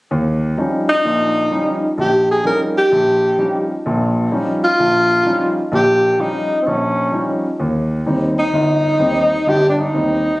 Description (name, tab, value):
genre	jazz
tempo	128 BPM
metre	4/4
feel	swing 66% on 8ths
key	Eb mixolydian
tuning	A4 = 439 Hz
part	warm grand piano	accompaniment	0.1-10.3 s	G1 to Eb4	-18 LUFS	equal	none
part	breathy alto saxophone	melody	0.9-10.4 s	C4 to Bb4	-14 LUFS	equal	plate reverb
room	moderate club reverb, RT60 0.8 s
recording	recorded on a phone in the room, club reverb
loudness	-14 LUFS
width	side -20 dB against mid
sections	0.1-10.4 A section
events	none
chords	0.1 Eb9; 7.6 Cm